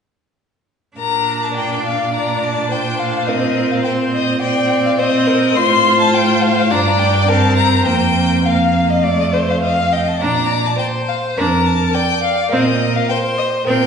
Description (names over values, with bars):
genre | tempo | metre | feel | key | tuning
quick classical-period movement for string quartet | 104 BPM | 4/4 | rubato | Bb major | A4 = 438 Hz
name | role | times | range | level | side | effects
warm violin | melody | 1.0-13.9 s | D5 to C6 | -18 LUFS | left 5 dB | none
warm violin | second line | 1.0-13.9 s | Bb4 to F5 | -20 LUFS | equal | none
clear viola | accompaniment | 1.0-13.9 s | A3 to F4 | -20 LUFS | right 2 dB | none
dark cello | bass | 1.0-13.9 s | F2 to Bb2 | -20 LUFS | right 2 dB | none
room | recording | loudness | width
wet recital hall reverb, RT60 1.5 s | recorded in a church or concert hall, nothing above 10.5 kHz | -13 LUFS | side -6 dB against mid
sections
1.0-13.9 A section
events
none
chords
1.0 Bb; 3.3 Cm7/Bb; 5.6 F/A; 6.7 Gm; 7.9 Fsus4; 9.0 F; 10.2 Bb; 12.5 Cm7/Bb